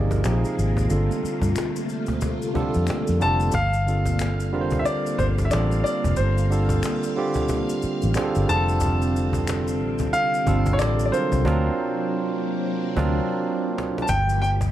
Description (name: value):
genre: R&B, neo-soul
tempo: 91 BPM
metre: 4/4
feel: swing 59% on 16ths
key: G minor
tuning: A4 = 440 Hz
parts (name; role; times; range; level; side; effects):
- barky tine electric piano; accompaniment; 0.0-14.1 s; C3 to F5; -26 LUFS; right 3 dB; overdrive
- phased string machine; sustained chords; 0.0-14.7 s; Bb2 to G5; -31 LUFS; left 1 dB; ensemble chorus, phaser
- vintage muted fingered electric bass; bass; 0.0-14.7 s; F1 to G2; -22 LUFS; equal; none
- cajon; drums; 0.1-14.7 s; none; -31 LUFS; equal; none
- maracas and finger snaps; percussion; 0.1-14.7 s; none; -39 LUFS; left 6 dB; none
- clear grand piano; melody; 3.2-14.5 s; C5 to A5; -26 LUFS; left 1 dB; none
room: light reverb, studio ambience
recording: dark, warm production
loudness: -20 LUFS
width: side -12 dB against mid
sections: 0.0-3.5 A section; 3.5-14.1 B section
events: band accent 11.4-14.1; drum fill 12.8-14.1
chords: 0.2 Bb5; 0.9 Gm11; 3.5 Gm7; 8.5 Fadd9; 11.4 D7alt; 14.1 Gm7